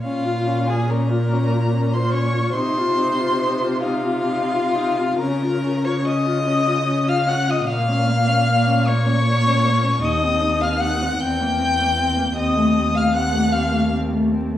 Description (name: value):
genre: classical, slow romantic movement for string quartet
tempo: 42-52 BPM (dotted quarters)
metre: 6/8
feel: rubato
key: Bb minor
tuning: A4 = 440 Hz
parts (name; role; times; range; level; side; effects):
- rich violin; melody; 0.0-13.9 s; F5 to G6; -24 LUFS; left 2 dB; none
- warm violin; second line; 0.0-13.9 s; F4 to G5; -24 LUFS; left 3 dB; none
- dark viola; accompaniment; 0.0-14.6 s; A3 to F4; -23 LUFS; left 1 dB; none
- dark cello; bass; 0.0-14.6 s; Eb2 to Db3; -22 LUFS; right 1 dB; none
room: wet recital hall reverb, RT60 1.3 s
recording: recorded in a church or concert hall, vinyl crackle, small room ambience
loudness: -17 LUFS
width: side -12 dB against mid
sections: 0.0-14.6 A section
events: none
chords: 0.0 Bbm; 2.6 F5/C; 5.2 Db69; 7.7 Bbm; 10.0 Ebm69; 11.2 C7/E; 12.4 Ebdim7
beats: | 0.03 1.32 | 2.56 3.82 | 5.19 6.46 | 7.68 8.87 | 10.04 11.21 | 12.37 13.54